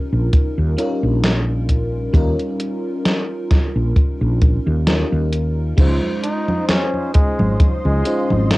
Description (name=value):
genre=vaporwave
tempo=66 BPM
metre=4/4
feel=swing 55% on 16ths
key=Db lydian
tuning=A4 = 439 Hz
part: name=FM electric piano with soft pad layer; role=accompaniment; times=0.0-8.6 s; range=G3 to C5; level=-23 LUFS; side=equal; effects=lush chorus, cassette tape, analog delay
part: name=woody fretless electric bass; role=bass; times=0.1-8.6 s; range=Ab1 to Eb2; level=-18 LUFS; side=equal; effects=none
part: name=gated 80s digital drum machine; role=drums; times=0.3-8.6 s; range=congas, crash cymbal, hi-hat, snare drum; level=-21 LUFS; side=equal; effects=gated reverb, gated reverb snare, overdrive, cassette tape
part: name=kick drum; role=drums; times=0.3-7.8 s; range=none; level=-15 LUFS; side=equal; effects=cassette tape
part: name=soft string machine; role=sustained chords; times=6.6-8.6 s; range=F4 to C6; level=-32 LUFS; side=equal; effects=phaser, ensemble chorus, cassette tape
part: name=mellow flugelhorn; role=melody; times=6.2-8.4 s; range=Ab3 to Eb4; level=-23 LUFS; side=equal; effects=cassette tape, tape echo
room=light reverb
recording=home recording on cassette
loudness=-16 LUFS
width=side -20 dB against mid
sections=0.0-5.8 A section; 5.8-8.6 B section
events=break 4.9-5.8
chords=0.0 Eb9; 5.8 Dbmaj9